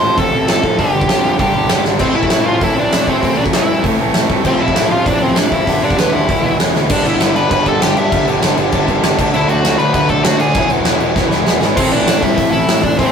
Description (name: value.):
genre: punk rock.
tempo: 197 BPM.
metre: 4/4.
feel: straight.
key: A minor.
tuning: A4 = 440 Hz.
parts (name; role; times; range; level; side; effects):
dark smooth lead guitar; melody; 0.0-13.1 s; B3 to C6; -17 LUFS; left 1 dB; overdrive.
distorted electric guitar; riff; 0.0-13.1 s; G2 to F4; -20 LUFS; left 6 dB; distortion.
distorted electric guitar; riff; 0.0-13.1 s; E2 to D4; -19 LUFS; right 6 dB; distortion.
fuzz picked electric bass; bass; 0.0-13.1 s; E1 to D3; -22 LUFS; equal; overdrive.
big rock drum kit; drums; 0.2-13.1 s; crash cymbal, hi-hat, kick drum, snare drum; -16 LUFS; equal; none.
room: light reverb.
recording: rough rehearsal-room recording, warm saturation.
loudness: -11 LUFS.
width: side -7 dB against mid.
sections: 0.0-6.9 A section; 6.9-11.8 B section; 11.8-13.1 C section.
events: drum fill 1.9, 6.7, 11.2-11.8.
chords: 0.0 F/A; 0.8 G; 2.0 Am; 4.4 F/A; 5.7 G; 6.3 E; 6.9 G; 9.2 D; 10.5 E; 11.8 Am.